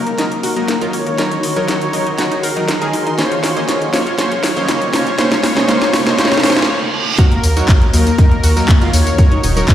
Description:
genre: progressive house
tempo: 120 BPM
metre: 4/4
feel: straight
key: unclear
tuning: A4 = 440 Hz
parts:
  - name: soft supersaw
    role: melody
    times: 0.0-9.7 s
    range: Bb4 to Db5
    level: -21 LUFS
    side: left 1 dB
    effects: tape echo
  - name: shimmering ambient pad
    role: sustained chords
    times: 0.0-9.7 s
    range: Db3 to Bb4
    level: -24 LUFS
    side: equal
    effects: chorus, built-in reverb, sidechain pumping
  - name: supersaw stab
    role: stabs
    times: 0.0-9.7 s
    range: Gb3 to Eb5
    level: -22 LUFS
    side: right 2 dB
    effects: sidechain pumping, tape echo
  - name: round analog bass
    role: bass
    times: 0.0-9.7 s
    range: Eb1 to Bb2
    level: -19 LUFS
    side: equal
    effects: none
  - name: riser and reverse cymbal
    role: sound effects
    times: 1.4-7.2 s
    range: none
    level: -25 LUFS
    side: right 3 dB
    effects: none
  - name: backwards swelling texture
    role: texture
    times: 1.4-9.7 s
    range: C6 to Db7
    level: -33 LUFS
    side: right 3 dB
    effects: none
  - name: analog pluck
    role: arpeggios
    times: 0.1-9.7 s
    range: Bb3 to C5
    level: -21 LUFS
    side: left 2 dB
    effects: chorus, sidechain pumping, tape echo
  - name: house drum kit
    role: drums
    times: 0.1-9.7 s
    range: handclaps, hi-hat, snare drum, tambourine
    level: -18 LUFS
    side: equal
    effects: overdrive
  - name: electronic kick drum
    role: drums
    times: 7.2-9.7 s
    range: none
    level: -10 LUFS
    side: equal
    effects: overdrive
room: wet lush hall reverb, RT60 1.6 s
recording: played on a big sound system in a bare room, large studio reverb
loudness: -12 LUFS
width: side -11 dB against mid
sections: 0.0-7.2 A section; 7.2-9.7 B section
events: build-up 0.0-7.2; drum fill 0.0-6.7; riser 1.4-6.7; reverse cymbal 6.2-7.2; stop 6.7-7.2; drop 7.2-9.7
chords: 0.0 Ebm; 3.2 Bbmadd9; 7.2 Ebm

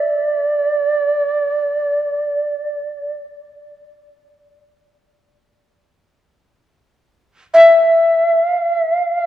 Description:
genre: japanese traditional, Japanese chamber music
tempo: free time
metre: none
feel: none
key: unclear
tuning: A4 = 440 Hz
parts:
  - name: reedy shakuhachi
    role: solo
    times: 0.0-9.3 s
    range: D5 to E5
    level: -13 LUFS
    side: equal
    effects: none
room: moderate church reverb, RT60 3.5 s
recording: dark, warm production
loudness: -13 LUFS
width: side -12 dB against mid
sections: 0.0-9.3 A section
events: none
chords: none

